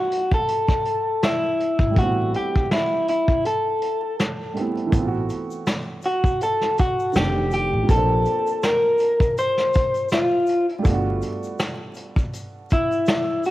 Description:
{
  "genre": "lo-fi hip hop",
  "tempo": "81 BPM",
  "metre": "4/4",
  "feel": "swing 56% on 16ths",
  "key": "A dorian",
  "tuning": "A4 = 441 Hz",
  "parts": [
    { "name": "electric guitar through a small old amp", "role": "melody", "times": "0.0-13.5 s", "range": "E4 to C5", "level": "-21 LUFS", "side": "left 1 dB", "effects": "cassette tape, analog delay" },
    { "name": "felt-muted upright piano", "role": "accompaniment", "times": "0.0-13.5 s", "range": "Eb3 to C5", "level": "-29 LUFS", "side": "right 4 dB", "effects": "cassette tape" },
    { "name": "vintage brush drum kit", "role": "drums", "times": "0.1-13.5 s", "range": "hi-hat, kick drum, snare drum", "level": "-23 LUFS", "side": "equal", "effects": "cassette tape" },
    { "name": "upright bass", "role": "bass", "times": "1.8-11.2 s", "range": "F1 to Bb1", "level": "-24 LUFS", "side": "equal", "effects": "none" },
    { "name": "egg shaker", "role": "percussion", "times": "4.9-13.5 s", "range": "none", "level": "-49 LUFS", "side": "left 7 dB", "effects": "none" }
  ],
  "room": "light reverb, small room reverb",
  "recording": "home recording on cassette, vinyl crackle",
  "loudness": "-19 LUFS",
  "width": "side -15 dB against mid",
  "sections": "0.0-4.9 A section; 4.9-13.5 B section",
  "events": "break 3.4-4.9",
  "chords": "0.0 Gmaj9; 2.0 Am7; 4.9 Am69; 7.1 F13; 7.9 Bbmaj9; 10.9 Gmaj9",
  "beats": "0.48 1.22 | 1.96 2.70 3.44 4.18 | 4.93 5.67 6.41 7.15 | 7.89 8.63 9.37 10.11 | 10.85 11.59 12.33 13.07"
}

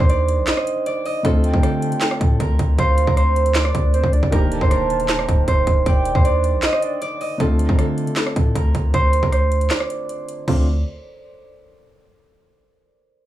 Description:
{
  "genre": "hip hop, trap",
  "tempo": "156 BPM",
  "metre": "4/4",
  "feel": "half-time",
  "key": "D phrygian",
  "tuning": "A4 = 440 Hz",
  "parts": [
    { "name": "concert harp", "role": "melody", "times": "0.0-10.7 s", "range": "A4 to Eb5", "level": "-22 LUFS", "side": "right 2 dB", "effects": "low-pass filter" },
    { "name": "felt-muted upright piano", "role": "accompaniment", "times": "0.0-10.7 s", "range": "D3 to G4", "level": "-26 LUFS", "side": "equal", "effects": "low-pass filter" },
    { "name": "long sustained 808-style bass", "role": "bass", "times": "0.0-10.8 s", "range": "D1 to D3", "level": "-20 LUFS", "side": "equal", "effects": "none" },
    { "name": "trap drum kit", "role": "drums", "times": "0.0-10.6 s", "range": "crash cymbal, handclaps, hi-hat, kick drum, rim click, snare drum", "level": "-19 LUFS", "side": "equal", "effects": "none" },
    { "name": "soft octave-layered synth lead", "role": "second line", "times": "1.4-7.0 s", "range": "C5 to A5", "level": "-26 LUFS", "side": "equal", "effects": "chorus, phaser, tape echo" }
  ],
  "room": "little or no reverb",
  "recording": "dry, gritty hardware recording, small room ambience",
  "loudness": "-16 LUFS",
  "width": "side -13 dB against mid",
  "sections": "0.0-7.4 A section; 7.4-10.5 B section; 10.5-12.0 C section",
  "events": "break 0.5-1.2, 6.6-7.4, 9.7-10.5",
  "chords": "0.0 Ebmaj7; 1.2 Dm7; 4.3 Ebmaj7; 7.4 Dm7",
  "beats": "0.09 0.48 0.86 | 1.25 1.63 2.02 2.40 | 2.79 3.17 3.56 3.94 | 4.32 4.71 5.09 5.48 | 5.86 6.25 6.63 7.02 | 7.40 7.79 8.17 8.55 | 8.94 9.32 9.71 10.09 | 10.48"
}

